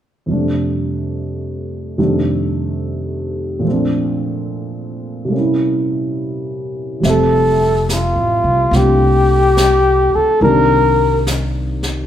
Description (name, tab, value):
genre	jazz ballad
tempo	71 BPM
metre	4/4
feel	swing 68% on 8ths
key	F major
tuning	A4 = 435 Hz
part	dark upright piano	accompaniment	0.3-12.1 s	F2 to E5	-18 LUFS	right 1 dB	none
part	upright bass	bass	7.0-12.0 s	F1 to C2	-17 LUFS	left 1 dB	none
part	jazz brush drum kit	drums	7.0-12.1 s	brushed snare drum, hi-hat, snare drum	-25 LUFS	left 1 dB	none
part	breathy flugelhorn	melody	7.1-11.2 s	F4 to Bb4	-13 LUFS	left 1 dB	none
room	wet large studio reverb, RT60 1.2 s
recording	heard from further back in the room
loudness	-13 LUFS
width	side -10 dB against mid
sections	0.3-7.0 A section; 7.0-12.1 B section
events	none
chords	0.3 F69; 2.0 F13; 3.7 Bbmaj7; 5.3 C7b9; 7.0 Fmaj9; 10.4 Cm9